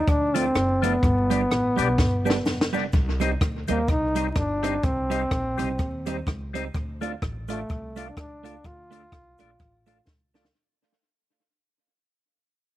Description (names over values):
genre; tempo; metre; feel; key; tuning
ska; 126 BPM; 4/4; swing 58% on 8ths; C dorian; A4 = 440 Hz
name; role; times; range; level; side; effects
breathy trombone; melody; 0.0-10.1 s; A3 to F4; -26 LUFS; equal; none
upright bass; bass; 0.0-10.5 s; F1 to Eb2; -29 LUFS; equal; none
compact cocktail drum kit; drums; 0.1-10.5 s; hi-hat, kick drum, rim click, snare drum; -26 LUFS; equal; tape echo
cabasa; percussion; 0.1-10.4 s; none; -52 LUFS; right 9 dB; none
clean electric guitar; accompaniment; 0.3-10.5 s; F3 to F4; -31 LUFS; right 6 dB; tape echo
percussive tonewheel organ; stabs; 0.3-10.5 s; F4 to Eb5; -32 LUFS; left 10 dB; overdrive, chorus vibrato, slow rotary speaker
room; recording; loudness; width
light reverb; 1960s-style stereo with parts hard left and right, vinyl crackle; -22 LUFS; side -14 dB against mid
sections
0.0-2.9 A section; 2.9-10.6 B section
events
drum fill 2.0-2.9, 10.1-10.6; fade-out 2.9-10.6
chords
0.0 Dm; 1.0 G; 2.9 Cm; 6.7 Dm